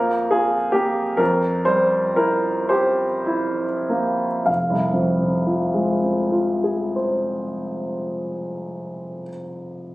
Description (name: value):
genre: classical, romantic character piece for solo piano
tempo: 31-49 BPM (dotted quarters)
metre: 6/8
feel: rubato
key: F minor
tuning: A4 = 440 Hz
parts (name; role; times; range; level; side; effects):
- warm concert grand piano; solo; 0.0-9.9 s; F1 to F5; -19 LUFS; equal; none
room: moderate stone room reverb, RT60 1.1 s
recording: recorded on a phone in the room, studio reverb, compression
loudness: -19 LUFS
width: side -18 dB against mid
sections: 0.0-4.5 A section; 4.5-7.8 B section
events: slowing down 0.0-4.5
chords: 0.0 Bb5/F; 1.2 C7/F; 4.5 Fm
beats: | 1.19 2.70 | 4.47 6.12